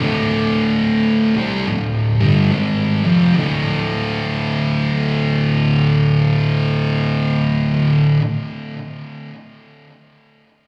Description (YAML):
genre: metal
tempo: 72 BPM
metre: 4/4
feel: swing 64% on 8ths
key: D phrygian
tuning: A4 = 441 Hz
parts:
  - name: thick fuzz guitar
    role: solo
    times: 0.0-8.2 s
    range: D2 to C4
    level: -17 LUFS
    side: equal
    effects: distortion, digital delay
room: moderate club reverb, RT60 0.5 s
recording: live gig heard through the venue's PA, club reverb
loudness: -17 LUFS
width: mono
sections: 0.0-3.3 A section; 3.3-6.7 B section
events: none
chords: 0.0 Dm; 3.3 D5